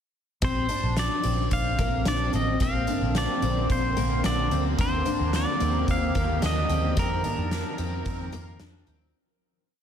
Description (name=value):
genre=dream pop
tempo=110 BPM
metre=4/4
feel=straight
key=Bb major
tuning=A4 = 439 Hz
part: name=pedal steel guitar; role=melody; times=0.4-8.6 s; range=Bb4 to F5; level=-30 LUFS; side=equal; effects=tape echo
part: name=shimmering ambient pad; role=sustained chords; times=1.2-9.1 s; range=D3 to Bb4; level=-31 LUFS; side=right 1 dB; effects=chorus, built-in reverb
part: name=picked twelve-string acoustic guitar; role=arpeggios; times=0.4-9.1 s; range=Bb3 to D4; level=-32 LUFS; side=left 6 dB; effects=lush chorus, tape echo
part: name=vintage muted fingered electric bass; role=bass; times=0.4-9.1 s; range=A1 to F2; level=-28 LUFS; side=equal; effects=none
part: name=oversized low-tuned drum kit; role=drums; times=0.4-9.0 s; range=hi-hat, kick drum, snare drum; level=-29 LUFS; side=equal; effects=none
room=light reverb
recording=dense, heavily limited modern master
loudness=-23 LUFS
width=side -8 dB against mid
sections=0.4-9.2 verse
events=fade-out 7.0-9.2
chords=0.4 Bbadd9; 4.8 Ebmaj7; 7.0 F7sus4